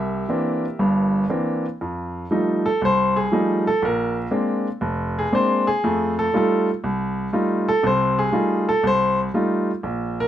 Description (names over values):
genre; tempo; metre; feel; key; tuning
solo jazz; 119 BPM; 4/4; swing 68% on 8ths; F mixolydian; A4 = 440 Hz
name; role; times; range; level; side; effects
clear baby grand piano; solo; 0.0-10.3 s; F1 to E5; -19 LUFS; equal; none
room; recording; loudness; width
light reverb; dark, warm production; -19 LUFS; side -11 dB against mid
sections
0.0-1.8 A section; 1.8-10.3 B section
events
grand piano solo 1.8-10.3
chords
0.0 C9; 1.8 F9; 3.8 Bb9; 5.8 F9